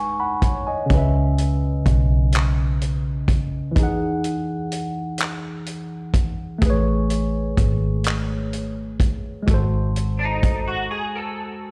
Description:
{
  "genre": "slow six-eight R&B",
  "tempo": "42 BPM (dotted quarters)",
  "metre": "6/8",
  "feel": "straight",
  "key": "C# minor",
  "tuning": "A4 = 441 Hz",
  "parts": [
    { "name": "mellow tine electric piano", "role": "accompaniment", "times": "0.0-11.7 s", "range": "C#3 to C#6", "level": "-27 LUFS", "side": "equal", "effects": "overdrive, phaser" },
    { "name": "vintage muted fingered electric bass", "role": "bass", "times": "0.0-10.9 s", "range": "G#1 to E2", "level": "-24 LUFS", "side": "equal", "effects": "none" },
    { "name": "warm soul drum kit", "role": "drums", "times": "0.4-10.7 s", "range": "handclaps, hi-hat, kick drum", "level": "-23 LUFS", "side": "equal", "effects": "vintage 12-bit sampler grit" },
    { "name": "clean electric guitar", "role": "second line", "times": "10.2-11.7 s", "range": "D#4 to A4", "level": "-28 LUFS", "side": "equal", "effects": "ensemble chorus, tape echo" }
  ],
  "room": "studio reverb",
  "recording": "played on a big sound system in a bare room, stone room reverb",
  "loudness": "-22 LUFS",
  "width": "mono",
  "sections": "0.0-11.7 A section",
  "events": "tine electric piano fill 0.0-0.9; break 10.9-11.7",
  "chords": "0.0 G#m7; 0.9 C#m7; 3.8 Emaj9; 6.6 Amaj9; 9.5 G#7b9",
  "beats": "| 0.91 2.33 | 3.76 5.19 | 6.62 8.05 | 9.48 10.91"
}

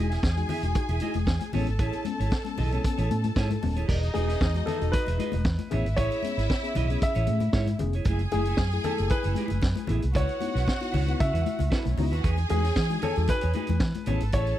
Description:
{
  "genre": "disco",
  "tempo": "115 BPM",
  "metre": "4/4",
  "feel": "straight",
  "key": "unclear",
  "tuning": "A4 = 439 Hz",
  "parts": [
    { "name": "rich studio string section", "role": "second line", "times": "0.0-14.6 s", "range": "A3 to A5", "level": "-35 LUFS", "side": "equal", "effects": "none" },
    { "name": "clean electric guitar", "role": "accompaniment", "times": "0.0-14.6 s", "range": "A3 to E5", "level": "-36 LUFS", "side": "right 5 dB", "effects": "none" },
    { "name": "mellow tine electric piano", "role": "accompaniment", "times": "0.0-14.5 s", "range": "A2 to G#4", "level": "-35 LUFS", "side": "left 6 dB", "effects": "slow stereo tremolo" },
    { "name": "vintage muted fingered electric bass", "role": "bass", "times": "0.0-14.5 s", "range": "D#1 to E3", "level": "-26 LUFS", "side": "equal", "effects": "none" },
    { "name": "vintage drum kit", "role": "drums", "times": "0.1-14.6 s", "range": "crash cymbal, hi-hat, kick drum, snare drum", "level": "-28 LUFS", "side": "equal", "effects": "none" },
    { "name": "congas", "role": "percussion", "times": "0.5-14.5 s", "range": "none", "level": "-35 LUFS", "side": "left 7 dB", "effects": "none" },
    { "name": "warm baby grand piano", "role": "melody", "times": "4.1-14.6 s", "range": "G#4 to E5", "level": "-32 LUFS", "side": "equal", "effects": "none" }
  ],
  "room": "little or no reverb",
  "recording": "dry, close 1970s-style studio recording",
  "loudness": "-24 LUFS",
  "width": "side -13 dB against mid",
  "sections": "0.0-3.9 A section; 3.9-14.6 B section",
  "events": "none",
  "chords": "0.0 Emaj7; 1.5 Amaj7; 3.9 Emaj7; 5.7 Amaj7; 8.1 F#m9; 10.2 C#m11; 12.2 Emaj7; 14.1 Amaj7",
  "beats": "0.23 0.75 1.27 | 1.79 2.32 2.84 3.36 | 3.88 4.41 4.93 5.45 | 5.97 6.50 7.02 7.54 | 8.06 8.59 9.11 9.63 | 10.15 10.68 11.20 11.72 | 12.24 12.77 13.29 13.81 | 14.34"
}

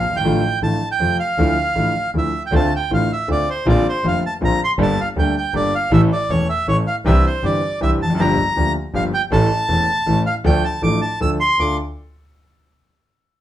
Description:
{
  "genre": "tango",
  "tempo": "159 BPM",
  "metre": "3/4",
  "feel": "rubato",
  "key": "D minor",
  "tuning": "A4 = 440 Hz",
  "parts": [
    { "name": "bandoneon", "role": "melody", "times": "0.0-11.8 s", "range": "C5 to E6", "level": "-20 LUFS", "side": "right 2 dB", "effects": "none" },
    { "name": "clear concert grand piano", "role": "accompaniment", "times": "0.0-11.8 s", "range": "E1 to A4", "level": "-20 LUFS", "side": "left 1 dB", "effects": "none" },
    { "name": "rich double bass", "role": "bass", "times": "0.0-11.7 s", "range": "E1 to F2", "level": "-21 LUFS", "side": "equal", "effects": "none" }
  ],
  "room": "moderate studio reverb, RT60 0.6 s",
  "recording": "band playing live in one room",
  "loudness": "-16 LUFS",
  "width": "side -12 dB against mid",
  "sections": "0.0-2.5 A section; 2.5-11.6 B section; 11.6-12.7 C section",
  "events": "none",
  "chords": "0.2 Dm/A; 1.0 F; 1.4 Dmadd9; 2.5 Dm7; 3.7 Bbadd9; 4.8 Gmadd9; 5.9 A; 7.1 Cadd9; 8.2 Gm7; 9.3 A; 10.4 Dm",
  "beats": "| 0.24 0.61 0.99 | 1.37 1.75 2.14 | 2.52 2.90 3.28 | 3.66 4.04 4.42 | 4.79 5.17 5.54 | 5.92 6.30 6.68 | 7.06 7.44 7.82 | 8.19 8.57 8.94 | 9.32 9.69 10.07 | 10.45 10.83 11.21 | 11.59"
}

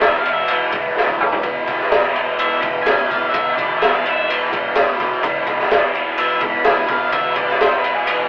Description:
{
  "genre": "psychedelic rock",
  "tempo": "127 BPM",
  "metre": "4/4",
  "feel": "straight",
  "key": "E major",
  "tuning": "A4 = 439 Hz",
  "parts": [
    { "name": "octave-fuzz lead guitar", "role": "melody", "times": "0.0-8.2 s", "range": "G#4 to B5", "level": "-21 LUFS", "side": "equal", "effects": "distortion" },
    { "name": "overdriven combo organ", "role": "sustained chords", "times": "0.0-8.3 s", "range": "G#3 to B5", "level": "-32 LUFS", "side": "equal", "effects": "none" },
    { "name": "fuzz guitar", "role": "riff", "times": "0.0-8.3 s", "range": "E2 to E3", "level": "-22 LUFS", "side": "equal", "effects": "distortion, phaser" },
    { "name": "fingered electric bass", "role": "bass", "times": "0.0-8.1 s", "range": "D2 to G#2", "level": "-44 LUFS", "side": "equal", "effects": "none" },
    { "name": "raw garage drum kit", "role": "drums", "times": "0.0-8.2 s", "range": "kick drum, ride cymbal, snare drum, toms", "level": "-16 LUFS", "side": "equal", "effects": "none" }
  ],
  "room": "light reverb",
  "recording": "rough rehearsal-room recording, telephone sound",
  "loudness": "-15 LUFS",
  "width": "side -37 dB against mid",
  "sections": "0.0-8.3 A section",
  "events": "lead electric guitar solo 0.0-8.3; drum fill 1.0-1.4",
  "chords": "0.0 E",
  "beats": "0.01 0.49 0.96 | 1.44 1.91 2.39 2.86 | 3.34 3.81 4.28 4.76 | 5.23 5.71 6.18 6.65 | 7.12 7.59 8.07"
}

